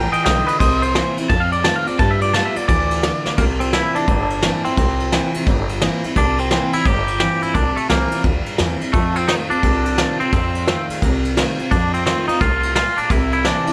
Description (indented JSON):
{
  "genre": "rockabilly",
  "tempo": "173 BPM",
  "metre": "4/4",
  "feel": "swing 64% on 8ths",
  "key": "C mixolydian",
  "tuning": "A4 = 440 Hz",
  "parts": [
    { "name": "twangy electric guitar", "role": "melody", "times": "0.0-13.7 s", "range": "A3 to Bb5", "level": "-22 LUFS", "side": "equal", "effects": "tape echo" },
    { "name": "picked steel-string acoustic guitar", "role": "accompaniment", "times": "0.0-13.7 s", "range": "F2 to F4", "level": "-26 LUFS", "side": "equal", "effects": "none" },
    { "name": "upright bass", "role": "bass", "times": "0.0-13.7 s", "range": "G1 to G2", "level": "-25 LUFS", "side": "equal", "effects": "none" },
    { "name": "vintage brush drum kit", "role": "drums", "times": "0.1-13.7 s", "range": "kick drum, ride cymbal, snare drum", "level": "-23 LUFS", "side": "equal", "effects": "none" }
  ],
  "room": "light reverb",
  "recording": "none",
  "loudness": "-18 LUFS",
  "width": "mono",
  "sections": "0.0-3.4 A section; 3.4-13.7 B section",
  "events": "clean electric guitar solo 0.0-3.4; drum fill 3.2",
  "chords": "0.0 G; 0.6 C7; 1.3 F7; 2.0 G7; 3.4 C7; 8.9 F7; 13.1 C7"
}